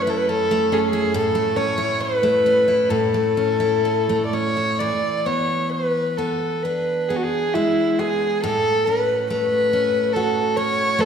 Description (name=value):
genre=celtic folk, Celtic slow air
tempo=60-71 BPM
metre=4/4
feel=rubato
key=E mixolydian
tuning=A4 = 440 Hz
part: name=dark fiddle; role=melody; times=0.0-11.1 s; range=E4 to D5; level=-19 LUFS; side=equal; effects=none
part: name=picked steel-string acoustic guitar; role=accompaniment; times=0.0-11.1 s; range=F#2 to F#4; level=-24 LUFS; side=equal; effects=none
room=wet scoring stage reverb, RT60 1.7 s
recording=recorded in a church or concert hall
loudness=-18 LUFS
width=side -7 dB against mid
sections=0.0-4.8 A section; 4.8-11.1 B section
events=none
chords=0.0 F#m7; 1.2 A; 4.8 E7; 8.4 A6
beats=0.29 | 1.16 2.01 2.90 3.86 | 4.82 5.74 6.65 7.54 | 8.42 9.28 10.13 10.98